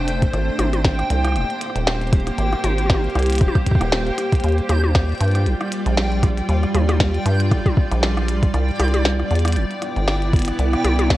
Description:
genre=IDM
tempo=117 BPM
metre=4/4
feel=swing 56% on 16ths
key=unclear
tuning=A4 = 440 Hz
part: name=granular cloud pad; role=sustained chords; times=0.0-11.2 s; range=G3 to D5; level=-24 LUFS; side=equal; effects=built-in reverb
part: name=deep acid bass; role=bass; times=0.0-11.2 s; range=Eb1 to G2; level=-19 LUFS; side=equal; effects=none
part: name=backwards swelling texture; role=texture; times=0.0-11.2 s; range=G5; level=-30 LUFS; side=right 1 dB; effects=built-in reverb, sidechain pumping
part: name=glitchy drum kit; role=drums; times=0.1-11.2 s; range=hi-hat, rim click, snare drum, toms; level=-24 LUFS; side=left 1 dB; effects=overdrive, small room ambience
part: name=electronic kick drum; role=drums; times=0.2-11.2 s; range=none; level=-17 LUFS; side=equal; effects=overdrive, small room ambience
room=light reverb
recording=worn, warbling old tape, cassette tape, warbly pitch drift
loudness=-17 LUFS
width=side -16 dB against mid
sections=0.0-11.2 A section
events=none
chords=0.3 Abmaj9; 4.2 Ebmaj9; 8.5 Cmaj9

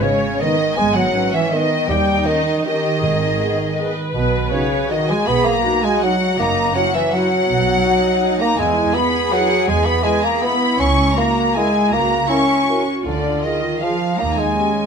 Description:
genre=classical, orchestral ballroom waltz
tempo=161 BPM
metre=3/4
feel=uneven beats, rubato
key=G# minor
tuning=A4 = 440 Hz
part: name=warm studio violin section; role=melody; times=0.0-14.9 s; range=B4 to C#6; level=-26 LUFS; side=left 5 dB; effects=none
part: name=bright flute section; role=second line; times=0.0-14.9 s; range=B4 to C#6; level=-24 LUFS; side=equal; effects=none
part: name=dark studio violin section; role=second line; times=0.0-14.9 s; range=B4 to C#6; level=-24 LUFS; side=left 2 dB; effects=none
part: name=dark studio viola section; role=accompaniment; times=0.0-14.9 s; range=B3 to B4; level=-25 LUFS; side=right 2 dB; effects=none
part: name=mellow bassoon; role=accompaniment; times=0.0-14.9 s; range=B2 to C#4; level=-20 LUFS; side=right 1 dB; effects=none
part: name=mellow French horn section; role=sustained chords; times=0.0-14.7 s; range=B3 to B4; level=-28 LUFS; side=left 4 dB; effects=none
part: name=warm studio cello section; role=bass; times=0.0-14.9 s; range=B2 to C#4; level=-23 LUFS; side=right 1 dB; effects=none
part: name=timpani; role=percussion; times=0.0-3.6 s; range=G#2 to D#3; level=-31 LUFS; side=left 2 dB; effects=none
part: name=dark studio double bass section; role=bass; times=0.8-14.5 s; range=F#1 to E2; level=-25 LUFS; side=right 3 dB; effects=none
room=moderate scoring stage reverb, RT60 1.5 s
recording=none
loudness=-15 LUFS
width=side -6 dB against mid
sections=0.0-14.9 A section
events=none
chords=0.0 G#m; 1.9 D#7; 3.0 G#m; 4.1 B; 6.4 F#7; 7.5 B; 8.6 E; 10.8 A#dim/C#; 13.0 Ddim; 14.2 D#7

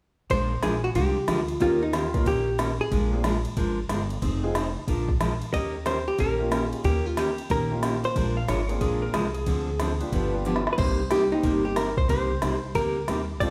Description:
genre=country, western swing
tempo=183 BPM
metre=4/4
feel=swing 64% on 8ths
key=Bb mixolydian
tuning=A4 = 440 Hz
part: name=hollow-body jazz guitar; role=melody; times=0.3-3.1, 5.5-8.3, 10.7-13.5 s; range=Eb4 to Eb5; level=-29 LUFS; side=equal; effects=none
part: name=picked steel-string acoustic guitar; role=accompaniment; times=0.3-13.5 s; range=C3 to Bb4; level=-32 LUFS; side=equal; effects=none
part: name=upright bass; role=bass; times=0.3-13.5 s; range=F1 to F2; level=-32 LUFS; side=equal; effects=none
part: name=organic electronic drum kit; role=drums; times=0.3-13.5 s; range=crash cymbal, hi-hat, kick drum, ride cymbal, snare drum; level=-32 LUFS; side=equal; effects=none
part: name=clear upright piano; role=accompaniment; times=1.6-13.5 s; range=G3 to Bb4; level=-36 LUFS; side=equal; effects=none
part: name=clean lap steel guitar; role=second line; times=8.4-10.1 s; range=Ab4 to F5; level=-35 LUFS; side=equal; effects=none
room=moderate large studio reverb, RT60 1.1 s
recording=band playing live in one room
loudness=-25 LUFS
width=mono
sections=0.3-13.5 A section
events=drum fill 10.5-10.8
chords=0.3 Bb9; 1.6 Eb9; 2.9 Bb7; 4.2 Fm7; 4.9 Bb7; 5.5 Eb9; 8.2 Bb9; 9.5 Dm7b5; 10.1 G7; 10.8 Cm7

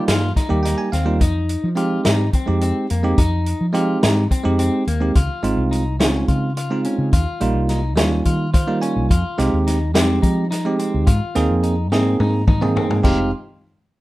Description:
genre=progressive instrumental, band music in an uneven meter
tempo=213 BPM (eighths)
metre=7/8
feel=straight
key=F minor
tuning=A4 = 440 Hz
part: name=bell-like tine electric piano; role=accompaniment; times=0.0-13.3 s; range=G3 to Ab5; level=-20 LUFS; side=right 2 dB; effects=none
part: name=electric guitar at the edge of break-up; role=arpeggios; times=0.0-13.3 s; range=Bb3 to F4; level=-27 LUFS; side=left 4 dB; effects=none
part: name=woody fretless electric bass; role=bass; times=0.1-13.3 s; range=F1 to F3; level=-20 LUFS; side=equal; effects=lush chorus
part: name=vintage drum kit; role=drums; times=0.1-13.2 s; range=crash cymbal, hi-hat, kick drum, snare drum, toms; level=-19 LUFS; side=equal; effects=none
room=moderate small room reverb, RT60 0.6 s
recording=rough home demo mix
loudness=-16 LUFS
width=side -17 dB against mid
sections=0.0-5.2 A section; 5.2-13.0 B section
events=tine electric piano fill 0.4-1.2, 8.3-9.1; drum fill 11.9-13.0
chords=0.0 Ebadd9; 5.2 Dbmaj7; 7.1 Ebadd9; 9.1 Fm7; 11.1 Abadd9; 13.0 Fm7

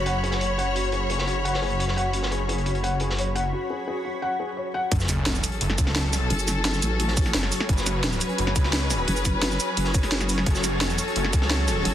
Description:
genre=dark technical drum and bass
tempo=173 BPM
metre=4/4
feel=straight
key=F# minor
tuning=A4 = 440 Hz
part: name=rich studio string section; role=sustained chords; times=0.0-11.9 s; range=F#3 to C#5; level=-29 LUFS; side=left 2 dB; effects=vintage 12-bit sampler grit, sidechain pumping
part: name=wide detuned saw bass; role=bass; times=0.0-11.8 s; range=F#1 to C#2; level=-27 LUFS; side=equal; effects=chorus, tube saturation
part: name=granular cloud pad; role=texture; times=0.0-11.9 s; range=F#4 to C#6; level=-32 LUFS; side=equal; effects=built-in reverb, sidechain pumping
part: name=felt-muted upright piano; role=arpeggios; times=0.1-4.8 s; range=F#4 to F#5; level=-30 LUFS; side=left 2 dB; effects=sidechain pumping, dub echo
part: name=crunchy breakbeat drum kit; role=drums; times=0.1-11.9 s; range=hi-hat, snare drum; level=-34 LUFS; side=equal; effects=high-pass filter on hats, low-pass filter on hats, high-pass filter on snare, low-pass filter on snare, high-pass filter on room, low-pass filter on room
part: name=drum and bass drum kit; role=drums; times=0.1-11.9 s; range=hi-hat, shaker, snare drum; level=-27 LUFS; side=right 1 dB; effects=low-pass filter on hats, low-pass filter on perc, low-pass filter on snare
part: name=electronic kick drum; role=drums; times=4.9-11.4 s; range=none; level=-23 LUFS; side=equal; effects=none
part: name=sub drop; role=sound effects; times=4.9-6.3 s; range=none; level=-30 LUFS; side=equal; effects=none
part: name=vowel-sweep wobble bass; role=bass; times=6.3-11.9 s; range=F#1 to A1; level=-26 LUFS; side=equal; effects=chorus
room=light reverb, studio reverb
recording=dense, heavily limited modern master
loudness=-22 LUFS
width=side -11 dB against mid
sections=0.0-4.9 A section; 4.9-11.9 B section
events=break 3.5-4.9; drop 4.9-11.9; impact 4.9-6.3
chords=0.0 F#5; 4.9 F#m

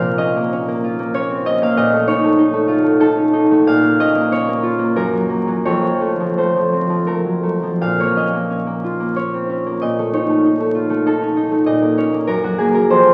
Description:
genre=classical, solo harp piece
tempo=77-100 BPM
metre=3/4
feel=rubato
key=Bb minor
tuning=A4 = 440 Hz
part: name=concert harp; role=solo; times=0.0-13.1 s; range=F2 to F5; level=-17 LUFS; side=equal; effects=none
room=wet recital hall reverb, RT60 1.6 s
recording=very old 78 rpm record, vinyl crackle, nothing above 10.5 kHz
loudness=-17 LUFS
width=mono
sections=0.0-13.1 A section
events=none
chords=0.0 Bbm; 1.8 F7/Bb; 3.7 Bbm; 5.0 Gb; 5.6 F; 7.8 Bbm; 9.8 F7/Bb; 11.7 Bbm; 12.3 Gbadd9

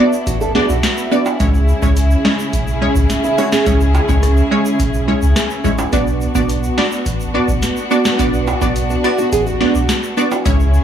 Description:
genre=dancehall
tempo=106 BPM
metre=4/4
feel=straight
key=B dorian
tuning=A4 = 440 Hz
part: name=punchy chord stab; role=accompaniment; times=0.0-10.8 s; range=G#3 to D5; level=-17 LUFS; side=right 1 dB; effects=chorus, sidechain pumping
part: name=warm studio string section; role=sustained chords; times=0.0-10.8 s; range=C#3 to G#4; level=-21 LUFS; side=left 1 dB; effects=sidechain pumping
part: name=egg shaker and timbales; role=percussion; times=0.1-10.8 s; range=none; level=-28 LUFS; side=right 5 dB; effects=none
part: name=fingerpicked old ladder-braced acoustic guitar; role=arpeggios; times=0.3-3.8, 8.9-10.3 s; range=D4 to A4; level=-21 LUFS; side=right 4 dB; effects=none
part: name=warm sub bass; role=bass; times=0.3-10.8 s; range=A1 to C#2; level=-16 LUFS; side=equal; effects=none
part: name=booming analog drum machine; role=drums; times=0.3-10.6 s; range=hi-hat, kick drum, rim click, snare drum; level=-19 LUFS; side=equal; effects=none
room=little or no reverb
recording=small room ambience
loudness=-13 LUFS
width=side -9 dB against mid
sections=0.0-10.8 A section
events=none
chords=0.0 Bm; 1.4 C#m; 5.9 Bm

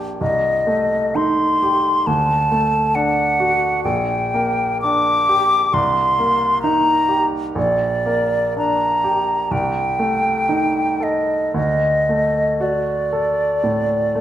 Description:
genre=classical, romantic duo for flute and grand piano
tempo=55-70 BPM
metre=4/4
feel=rubato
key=G minor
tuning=A4 = 440 Hz
part: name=clear baby grand piano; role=accompaniment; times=0.0-14.2 s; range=Bb1 to A4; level=-21 LUFS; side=right 1 dB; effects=none
part: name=hollow concert flute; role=melody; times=0.2-14.2 s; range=D5 to D6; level=-17 LUFS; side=left 1 dB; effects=none
room=wet recital hall reverb, RT60 1.5 s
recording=none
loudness=-16 LUFS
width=side -11 dB against mid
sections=0.0-14.2 A section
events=none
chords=0.2 Am7b5/C; 2.1 D; 3.8 Gm/Bb; 5.7 Cm7; 7.6 Gm/Bb; 9.5 Am7b5/C; 11.6 D

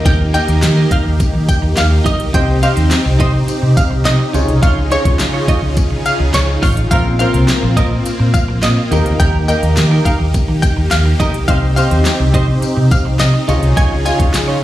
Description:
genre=dance-pop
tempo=105 BPM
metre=4/4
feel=straight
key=unclear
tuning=A4 = 440 Hz
part: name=warm concert grand piano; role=accompaniment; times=0.0-14.6 s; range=Bb3 to F5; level=-22 LUFS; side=left 4 dB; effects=none
part: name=supersaw pad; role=sustained chords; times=0.0-14.6 s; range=Db3 to Ab4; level=-21 LUFS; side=equal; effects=sidechain pumping
part: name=clean electric guitar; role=riff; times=0.0-14.6 s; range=C4 to Db5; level=-24 LUFS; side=right 6 dB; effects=analog chorus
part: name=vintage muted fingered electric bass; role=bass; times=0.0-14.6 s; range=A1 to Eb3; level=-14 LUFS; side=equal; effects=sidechain pumping
part: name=analog pluck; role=melody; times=0.1-14.5 s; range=Db5 to Ab5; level=-21 LUFS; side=equal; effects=chorus, sidechain pumping, tape echo
part: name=pop drum kit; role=drums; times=0.1-14.5 s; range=handclaps, hi-hat, kick drum, snare drum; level=-15 LUFS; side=equal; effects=none
part: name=tambourine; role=percussion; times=0.1-14.5 s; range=none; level=-31 LUFS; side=left 9 dB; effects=none
room=little or no reverb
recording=played on a big sound system in a bare room, stone room reverb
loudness=-11 LUFS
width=side -14 dB against mid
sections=0.0-14.6 A section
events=none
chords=0.0 Eb; 2.3 Cm; 4.3 Dbadd9; 6.9 Bbsus2; 8.9 Eb; 11.5 Cm; 13.5 Dbadd9

